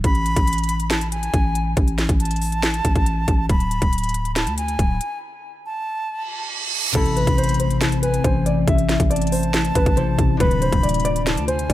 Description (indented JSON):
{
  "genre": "hip hop, trap",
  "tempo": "139 BPM",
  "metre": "4/4",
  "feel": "half-time",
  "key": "A harmonic minor",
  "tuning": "A4 = 440 Hz",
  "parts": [
    { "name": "bright reedy concert flute", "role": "second line", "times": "0.0-11.7 s", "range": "G#5 to B5", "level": "-26 LUFS", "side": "equal", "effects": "ping-pong delay" },
    { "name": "concert harp", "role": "accompaniment", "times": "0.0-0.1, 6.9-11.7 s", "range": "C3 to A4", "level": "-25 LUFS", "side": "left 4 dB", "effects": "low-pass filter" },
    { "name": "growling 808-style bass", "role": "bass", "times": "0.0-11.7 s", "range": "D1 to D2", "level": "-22 LUFS", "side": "equal", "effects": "none" },
    { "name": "trap drum kit", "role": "drums", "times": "0.0-11.7 s", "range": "crash cymbal, hi-hat, kick drum, snare drum", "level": "-21 LUFS", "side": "equal", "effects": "none" },
    { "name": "reverse cymbal and impact", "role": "sound effects", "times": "6.3-8.7 s", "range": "none", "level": "-26 LUFS", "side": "right 4 dB", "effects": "none" },
    { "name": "dark concert grand piano", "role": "melody", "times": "6.9-11.7 s", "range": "A4 to E5", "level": "-24 LUFS", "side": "equal", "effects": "low-pass filter, ping-pong delay" },
    { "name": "glassy FM pad", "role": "sustained chords", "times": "7.9-11.7 s", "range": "D3 to F4", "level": "-27 LUFS", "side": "left 2 dB", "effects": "ensemble chorus, built-in reverb" }
  ],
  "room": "little or no reverb",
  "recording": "none",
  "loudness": "-18 LUFS",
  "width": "side -14 dB against mid",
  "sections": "0.0-6.9 A section; 6.9-11.7 B section",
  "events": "break 0.0-6.9; reverse cymbal 6.3-6.9; impact 6.9-8.7",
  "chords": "0.0 Asus2; 3.5 D5; 6.9 Am; 10.4 Dm"
}